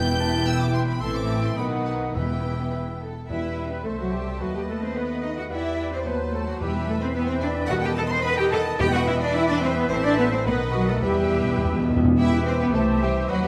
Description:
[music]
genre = quick classical-period movement for symphony orchestra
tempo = 108 BPM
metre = 2/4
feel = straight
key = E minor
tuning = A4 = 440 Hz
[part]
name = rich studio violin section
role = melody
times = 0.0-13.5 s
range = F#4 to G6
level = -39 LUFS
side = equal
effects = none
[part]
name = bright flute section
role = second line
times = 0.0-13.5 s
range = F#4 to C6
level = -36 LUFS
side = equal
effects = none
[part]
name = mellow cor anglais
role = second line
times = 0.0-13.5 s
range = G4 to A5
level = -37 LUFS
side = equal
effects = none
[part]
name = rich studio violin section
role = second line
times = 0.0-13.5 s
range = F#4 to C6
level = -38 LUFS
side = equal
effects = none
[part]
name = warm clarinet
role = second line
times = 0.0-13.5 s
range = F#4 to C6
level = -35 LUFS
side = equal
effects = none
[part]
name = mellow bassoon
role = accompaniment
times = 0.0-13.5 s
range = D#3 to A3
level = -35 LUFS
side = equal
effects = none
[part]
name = rich studio viola section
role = accompaniment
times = 0.0-13.5 s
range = B3 to E5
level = -36 LUFS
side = equal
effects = none
[part]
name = mellow French horn section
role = sustained chords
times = 0.0-13.5 s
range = F#3 to E5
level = -35 LUFS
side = equal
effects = none
[part]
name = rich studio cello section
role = bass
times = 0.0-13.5 s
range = E2 to C5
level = -30 LUFS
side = equal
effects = none
[part]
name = rich studio double bass section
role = bass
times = 0.0-13.5 s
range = E1 to E2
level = -32 LUFS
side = equal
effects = none
[part]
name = timpani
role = percussion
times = 0.0-3.8, 6.6-12.1 s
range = E2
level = -29 LUFS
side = equal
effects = none
[sound]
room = wet recital hall reverb, RT60 1.5 s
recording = none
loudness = -24 LUFS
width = mono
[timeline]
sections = 0.0-3.3 A section; 3.3-12.2 A section; 12.2-13.5 A section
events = timpani fill 11.0-12.2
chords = 0.0 Em; 1.0 Am; 1.6 B; 2.2 Em; 3.9 Am/C; 4.4 B7/D#; 5.5 Em; 6.1 D#dim7; 6.6 Em; 7.7 B7/E; 8.8 Em; 9.9 Am; 10.5 B; 11.0 Em; 12.7 Am/C

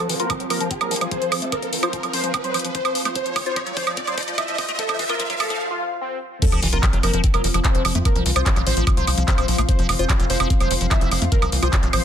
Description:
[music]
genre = psychedelic trance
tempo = 147 BPM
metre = 4/4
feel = straight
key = unclear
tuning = A4 = 440 Hz
[part]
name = wide unison lead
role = melody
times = 0.0-12.0 s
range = C4 to E5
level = -27 LUFS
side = left 1 dB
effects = phaser, sidechain pumping, tape echo
[part]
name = pulsing gated texture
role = sustained chords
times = 0.0-12.0 s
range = F3 to F4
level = -32 LUFS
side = right 2 dB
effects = chorus, built-in reverb, sidechain pumping
[part]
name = liquid acid bass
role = riff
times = 0.0-12.0 s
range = E3 to F4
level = -28 LUFS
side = left 1 dB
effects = phaser, auto-pan, sidechain pumping, tape echo
[part]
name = riser and sub drop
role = sound effects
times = 0.0-8.1 s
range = none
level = -29 LUFS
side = right 1 dB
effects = none
[part]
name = granular cloud pad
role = texture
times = 0.0-12.0 s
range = F4 to F5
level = -34 LUFS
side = left 4 dB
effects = built-in reverb, sidechain pumping
[part]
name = drum and bass drum kit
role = drums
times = 0.1-12.0 s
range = crash cymbal, handclaps, hi-hat, woodblock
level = -24 LUFS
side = right 2 dB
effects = high-pass filter on hats, high-pass filter on perc, high-pass filter on cymbals, high-pass filter on snare, high-pass filter on room
[part]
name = electronic kick drum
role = drums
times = 0.3-11.8 s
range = none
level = -20 LUFS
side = equal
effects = none
[part]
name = tight sequencer bass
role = bass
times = 6.5-12.0 s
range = F1 to F2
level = -22 LUFS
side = equal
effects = none
[sound]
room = light reverb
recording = dense, heavily limited modern master, high-pass filter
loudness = -18 LUFS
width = side -9 dB against mid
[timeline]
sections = 0.0-6.4 A section; 6.4-12.0 B section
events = build-up 0.0-6.4; drum fill 0.0-5.6; riser 0.0-5.6; filter sweep on acid bass 0.0-6.4; break 5.6-6.4; drop 6.4-12.0; impact 6.4-8.1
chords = 0.0 F5

